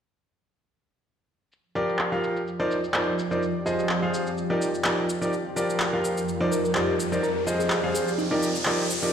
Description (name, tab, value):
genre	piano house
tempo	126 BPM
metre	4/4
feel	swing 54% on 16ths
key	F dorian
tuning	A4 = 441 Hz
part	electronic shaker and handclaps	drums	1.5-9.1 s	none	-29 LUFS	equal	low-pass filter on perc, low-pass filter on snare, low-pass filter on room
part	granular cloud pad	texture	2.4-9.1 s	F3 to D5	-30 LUFS	right 1 dB	built-in reverb
part	bright concert grand piano	riff	1.8-9.1 s	F3 to F5	-25 LUFS	equal	low-pass filter, ping-pong delay
part	riser	sound effects	6.3-9.1 s	none	-33 LUFS	equal	none
part	bell-like FM electric piano	melody	6.5-8.4 s	Eb4 to Bb4	-29 LUFS	left 1 dB	chorus, phaser, ping-pong delay
room	wet digital room reverb, RT60 1.1 s, digital ambience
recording	played on a big sound system in a bare room, stone room reverb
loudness	-23 LUFS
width	side -8 dB against mid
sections	1.5-9.1 A section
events	filter sweep on drum 1.5-9.1; riser 6.3-9.1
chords	1.5 Gm7/F; 2.5 Cm9/F; 3.4 Fm7; 4.4 Ebmaj7/F; 5.3 Gm7/F; 6.3 Cm9/F; 7.2 Fm7; 8.2 Ebmaj7/F